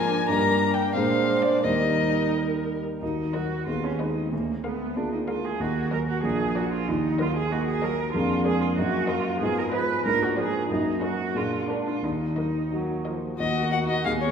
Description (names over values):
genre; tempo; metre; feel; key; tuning
quick classical-period movement for piano quintet; 86-96 BPM; 2/4; rubato; Eb major, Eb minor from 3.0 s; A4 = 442 Hz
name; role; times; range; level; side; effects
muted violin; melody; 0.0-14.3 s; Db5 to Bb5; -29 LUFS; left 5 dB; none
muted cello; second line; 0.0-14.3 s; F3 to Cb5; -28 LUFS; right 3 dB; none
muted violin; second line; 0.0-14.3 s; Gb4 to C5; -31 LUFS; left 2 dB; none
muted viola; accompaniment; 0.0-14.3 s; F3 to Ab4; -34 LUFS; right 3 dB; none
warm grand piano; accompaniment; 0.0-14.3 s; Bb1 to Ab4; -27 LUFS; right 1 dB; none
room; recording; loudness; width
wet concert hall reverb, RT60 1.9 s; recorded in a church or concert hall; -23 LUFS; side -7 dB against mid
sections
0.0-3.0 A section; 3.0-13.4 B section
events
none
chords
0.3 Eb/G; 1.0 Bb7; 1.7 Eb; 3.0 Ebm; 3.7 Abm/Eb; 4.3 Bb7/D; 5.6 Ebm; 6.2 Bb7; 6.9 Ebm; 8.1 Bb7/F; 8.8 Ebm/Gb; 9.4 Fm7b5/Ab; 10.1 Bb7/Ab; 10.7 Ebm/Gb; 11.3 Bb7; 12.0 Ebm